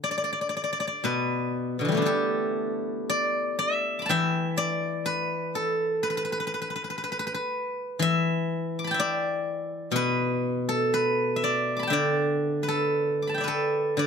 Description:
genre	chinese traditional, Chinese solo plucked strings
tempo	61 BPM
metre	4/4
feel	uneven beats, rubato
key	D zhi mode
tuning	A4 = 440 Hz
part	steel-string zither	solo	0.0-14.1 s	B2 to D6	-24 LUFS	equal	none
room	light reverb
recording	none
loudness	-24 LUFS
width	side -6 dB against mid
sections	0.0-14.1 A section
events	none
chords	none

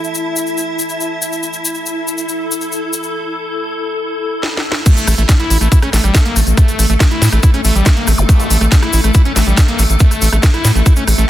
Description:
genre	psychedelic trance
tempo	140 BPM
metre	4/4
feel	straight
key	unclear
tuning	A4 = 439 Hz
part	swarming drone	sustained chords	0.0-11.3 s	A3 to E5	-21 LUFS	left 1 dB	built-in reverb, sidechain pumping
part	egg shaker	percussion	0.0-11.3 s	none	-21 LUFS	left 4 dB	none
part	deep dark ambient pad	texture	0.0-3.1 s	E4 to A5	-33 LUFS	right 4 dB	chorus, built-in reverb, sidechain pumping
part	garage drum kit	drums	4.4-11.3 s	crash cymbal, hi-hat, rim click, snare drum	-19 LUFS	right 1 dB	soft clipping on snare
part	screaming distorted acid line	riff	4.9-11.3 s	G3 to E4	-20 LUFS	equal	distortion, chorus, auto-pan, vintage 12-bit sampler grit, sidechain pumping, digital delay
part	electronic kick drum	drums	4.9-10.9 s	none	-10 LUFS	equal	none
part	round analog bass	bass	5.1-11.2 s	G1 to A2	-12 LUFS	equal	none
part	zap	sound effects	8.2-8.3 s	none	-26 LUFS	equal	none
room	light reverb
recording	dense, heavily limited modern master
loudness	-11 LUFS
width	side -13 dB against mid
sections	0.0-4.9 A section; 4.9-11.3 B section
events	drum fill 4.4-4.9; drop 4.9-11.3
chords	0.0 A5

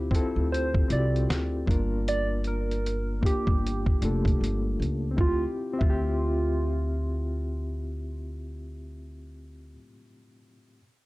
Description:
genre	lo-fi hip hop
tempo	77 BPM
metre	4/4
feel	swing 61% on 16ths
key	D minor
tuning	A4 = 440 Hz
part	reed electric piano	accompaniment	0.0-10.8 s	A3 to E5	-32 LUFS	left 2 dB	overdrive, fast tremolo, cassette tape, low-pass filter, plate reverb
part	upright bass	bass	0.0-9.8 s	F1 to D2	-29 LUFS	equal	none
part	dusty soul sampler-style drum kit	drums	0.1-6.0 s	hi-hat, kick drum, snare drum	-25 LUFS	equal	vintage 12-bit sampler grit
part	soft struck synth lead	melody	0.5-7.5 s	F4 to D5	-32 LUFS	right 3 dB	chorus, low-pass filter, plate reverb
room	light reverb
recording	dark, warm production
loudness	-24 LUFS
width	side -20 dB against mid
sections	0.0-5.2 A section; 5.2-8.3 B section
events	none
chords	0.0 Dm11; 1.7 Gm7; 5.2 Dm11

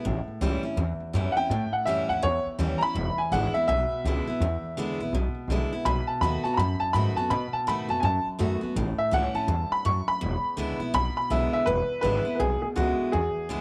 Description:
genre	rockabilly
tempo	165 BPM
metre	4/4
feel	swing 62% on 8ths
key	E mixolydian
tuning	A4 = 440 Hz
part	picked steel-string acoustic guitar	accompaniment	0.0-13.6 s	E2 to F#4	-33 LUFS	equal	none
part	upright bass	bass	0.1-13.6 s	E1 to B2	-31 LUFS	equal	none
part	warm upright piano	melody	1.3-13.6 s	F#4 to C#6	-29 LUFS	equal	none
room	light reverb, studio reverb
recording	none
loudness	-27 LUFS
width	mono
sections	0.0-11.7 A section; 11.7-13.6 B section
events	upright piano solo 0.0-11.7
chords	0.1 A7; 3.0 E7; 5.9 B7; 8.8 A7; 10.2 E7

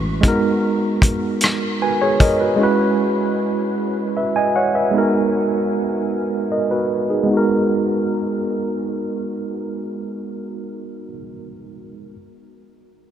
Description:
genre	slow six-eight R&B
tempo	51 BPM (dotted quarters)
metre	6/8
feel	straight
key	G# minor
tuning	A4 = 437 Hz
part	tine electric piano	accompaniment	0.0-12.2 s	G#3 to G#5	-18 LUFS	right 1 dB	medium stereo tremolo, low-pass filter
part	warm soul drum kit	drums	0.2-2.4 s	hi-hat, kick drum, rim click	-20 LUFS	equal	none
room	moderate huge ambient reverb, RT60 8.4 s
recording	dreamy mix soaked in reverb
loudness	-17 LUFS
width	side -10 dB against mid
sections	0.0-7.3 A section; 7.3-9.6 B section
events	filter sweep on tine electric piano 0.0-7.3; tine electric piano fill 1.4-2.6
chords	0.2 G#m9; 2.6 F#7sus4; 4.9 G#m9

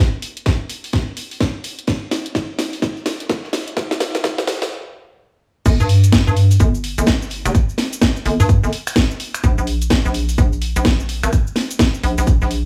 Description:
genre	bass house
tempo	127 BPM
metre	4/4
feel	swing 61% on 16ths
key	G phrygian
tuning	A4 = 439 Hz
part	deep reggae drum kit	drums	0.2-12.6 s	hi-hat, snare drum	-39 LUFS	equal	none
part	house drum kit	drums	0.2-12.6 s	crash cymbal, finger snaps, hi-hat, shaker, snare drum	-23 LUFS	equal	none
part	electronic kick drum	drums	0.5-12.4 s	none	-19 LUFS	equal	none
part	hollow knocking FM bass	bass	5.7-12.6 s	F1 to G2	-18 LUFS	equal	overdrive, sidechain pumping
room	light reverb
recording	high-pass filter, small room ambience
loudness	-18 LUFS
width	mono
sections	0.0-5.7 A section; 5.7-12.7 B section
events	build-up 0.0-5.7; drum fill 0.0-4.7; filter sweep 0.0-5.7; stop 4.7-5.7; drop 5.7-12.7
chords	none

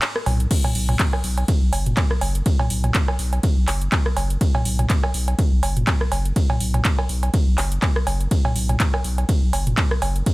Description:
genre	acid house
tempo	123 BPM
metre	4/4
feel	swing 56% on 16ths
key	unclear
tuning	A4 = 440 Hz
part	booming analog drum machine	drums	0.0-10.3 s	cowbell, crash cymbal, handclaps, hi-hat, ride cymbal, rim click, toms	-24 LUFS	right 1 dB	none
part	saturated sub bass	bass	0.3-10.2 s	F#1 to B1	-22 LUFS	equal	sidechain pumping
part	electronic kick drum	drums	0.5-10.3 s	none	-20 LUFS	equal	none
room	little or no reverb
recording	none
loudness	-18 LUFS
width	side -20 dB against mid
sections	0.5-10.3 A section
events	break 0.0-0.5; drop 0.5-10.3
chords	none

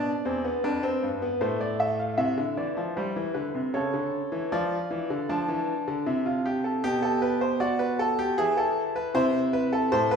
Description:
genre	classical, baroque-style 3-part fugue for grand piano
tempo	78 BPM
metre	3/4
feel	straight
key	C major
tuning	A4 = 439 Hz
part	bright grand piano	solo	0.0-10.2 s	E2 to A5	-24 LUFS	equal	none
room	wet recital hall reverb, RT60 1.5 s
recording	heard from further back in the room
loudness	-24 LUFS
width	side -6 dB against mid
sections	0.0-2.2 A section; 2.2-10.2 B section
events	none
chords	0.0 Bdim; 1.4 Am; 2.2 C; 3.8 A/C#; 4.5 Dm; 6.1 C; 6.8 G/B; 8.4 E; 9.1 Am/C

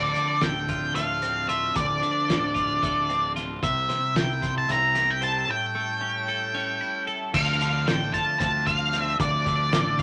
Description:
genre	psychedelic rock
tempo	226 BPM (eighths)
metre	7/8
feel	straight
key	D minor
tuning	A4 = 438 Hz
part	octave-fuzz lead guitar	melody	0.0-10.0 s	D5 to Bb5	-27 LUFS	equal	distortion
part	combo organ	sustained chords	0.0-10.0 s	F3 to Bb4	-40 LUFS	equal	none
part	twelve-string electric guitar	riff	0.0-10.0 s	D2 to C5	-33 LUFS	equal	phaser
part	fuzz fingered electric bass	bass	0.0-10.0 s	D1 to D2	-35 LUFS	equal	overdrive
part	cloth-damped thuddy drum kit	drums	0.1-10.0 s	crash cymbal, hi-hat, kick drum, snare drum	-31 LUFS	equal	none
room	moderate studio ambience, RT60 0.5 s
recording	none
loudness	-25 LUFS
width	mono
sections	0.0-7.3 A section; 7.3-10.0 B section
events	break 5.5-7.3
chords	0.0 Dm7; 3.6 C7; 5.5 A7; 7.3 Dm7

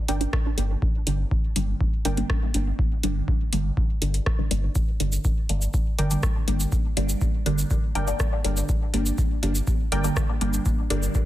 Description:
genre	dub techno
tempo	122 BPM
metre	4/4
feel	straight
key	G minor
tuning	A4 = 442 Hz
part	filtered dub chord stab	riff	0.1-2.3, 6.0-10.2 s	Bb4 to G5	-36 LUFS	equal	chorus, sidechain pumping, dub echo
part	filtered dub chord stab	stabs	0.1-11.2 s	D3 to D4	-29 LUFS	right 1 dB	phaser, dub echo
part	soft dub sub bass	bass	0.1-11.1 s	G1	-25 LUFS	equal	tube saturation, sidechain pumping
part	booming analog drum machine	drums	0.1-11.2 s	hi-hat, rim click, shaker	-31 LUFS	equal	soft clipping on snare
part	electronic kick drum	drums	0.3-11.2 s	none	-25 LUFS	equal	none
room	light reverb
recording	dense, heavily limited modern master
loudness	-22 LUFS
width	side -14 dB against mid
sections	0.0-11.3 A section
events	filter sweep on synth stab 0.0-11.3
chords	0.0 Gm

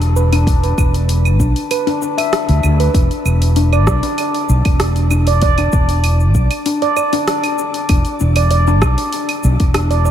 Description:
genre	organic downtempo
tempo	97 BPM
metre	4/4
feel	straight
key	unclear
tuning	A4 = 440 Hz
part	handpan	arpeggios	0.0-10.1 s	D4 to E5	-18 LUFS	equal	analog delay, shimmer reverb
part	fretless electric bass	bass	0.0-10.1 s	E1 to D2	-13 LUFS	equal	analog chorus, sidechain pumping
part	deep house drum kit	drums	0.0-10.1 s	claves, hi-hat, rim click, shaker	-23 LUFS	right 2 dB	none
part	electronic kick drum	drums	0.5-9.7 s	none	-16 LUFS	equal	none
room	moderate cathedral reverb, RT60 5.6 s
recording	dreamy mix soaked in reverb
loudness	-12 LUFS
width	side -10 dB against mid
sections	0.0-10.1 A section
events	none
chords	0.0 E5

